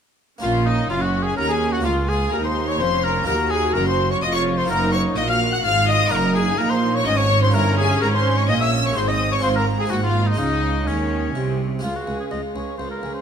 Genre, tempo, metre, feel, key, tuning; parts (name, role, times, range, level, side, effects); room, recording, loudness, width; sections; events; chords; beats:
classical, baroque-style concerto movement with solo episodes; 126 BPM; 3/4; straight; Bb minor, Db major from 6.1 s; A4 = 440 Hz
rich chamber violin section; melody; 0.4-13.2 s; Db5 to Gb6; -26 LUFS; left 3 dB
warm oboe; melody; 0.4-13.2 s; Db4 to Gb5; -25 LUFS; left 2 dB
rich chamber violin section; second line; 0.4-13.2 s; Db4 to Gb5; -26 LUFS; left 2 dB
harpsichord; accompaniment; 0.4-13.2 s; Db2 to Gb4; -30 LUFS; equal
rich symphonic viola section; accompaniment; 0.4-13.2 s; Ab3 to Gb4; -28 LUFS; right 1 dB
dark chamber cello section; bass; 0.4-13.1 s; Db2 to Eb3; -25 LUFS; right 3 dB
rich chamber double bass section; bass; 0.4-13.1 s; F1 to Eb2; -24 LUFS; right 2 dB
moderate scoring stage reverb, RT60 2.1 s; -18 LUFS; side -7 dB against mid
0.4-11.8 A section; 11.8-13.2 B section
0.4 Bbm; 1.9 Bbm/Db; 3.3 Ebm; 4.7 Ebm/Gb; 7.5 Gdim7; 9.0 Ab; 9.4 Db/Ab; 9.9 Ab; 10.4 Db
| 0.43 0.91 1.38 | 1.86 2.33 2.81 | 3.28 3.75 4.23 | 4.70 5.17 5.65 | 6.12 6.59 7.07 | 7.54 8.02 8.49 | 8.96 9.44 9.92 | 10.40 10.88 11.36 | 11.84 12.32 12.79